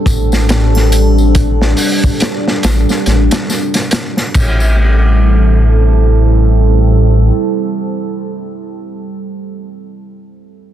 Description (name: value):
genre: trip hop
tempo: 70 BPM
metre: 4/4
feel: swing 59% on 16ths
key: A minor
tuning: A4 = 438 Hz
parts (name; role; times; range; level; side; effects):
- deep dark ambient pad; sustained chords; 0.0-8.8 s; G3 to A4; -16 LUFS; right 2 dB; chorus, built-in reverb
- dark detuned saw bass; bass; 0.1-7.3 s; A1; -10 LUFS; equal; none
- crunchy breakbeat drum kit; drums; 0.1-4.6 s; crash cymbal, hi-hat, kick drum, snare drum; -15 LUFS; equal; none
- tambourine and triangle; percussion; 0.1-4.7 s; none; -27 LUFS; left 3 dB; none
room: studio ambience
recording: dense, heavily limited modern master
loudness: -9 LUFS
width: side -11 dB against mid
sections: 0.0-4.8 A section; 4.8-8.2 B section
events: none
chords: 0.0 Am7